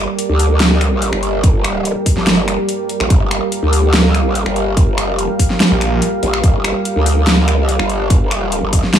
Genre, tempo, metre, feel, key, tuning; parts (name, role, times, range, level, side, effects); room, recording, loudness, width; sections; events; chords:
heavy wobble dubstep; 144 BPM; 4/4; half-time; G minor; A4 = 440 Hz
supersaw pad; sustained chords; 0.0-9.0 s; G3 to F5; -19 LUFS; right 1 dB; sidechain pumping, low-pass filter
growl bass; bass; 0.0-8.8 s; G1 to D2; -16 LUFS; equal; chorus, overdrive
dubstep drum kit; drums; 0.2-9.0 s; finger snaps, hi-hat, snare drum; -17 LUFS; equal
electronic kick drum; drums; 1.4-8.8 s; -13 LUFS; equal
snarling distorted saw bass; bass; 5.7-6.0 s; Bb1; -16 LUFS; equal; overdrive
little or no reverb; small room ambience; -12 LUFS; side -9 dB against mid
0.0-9.0 A section
0.0 Gm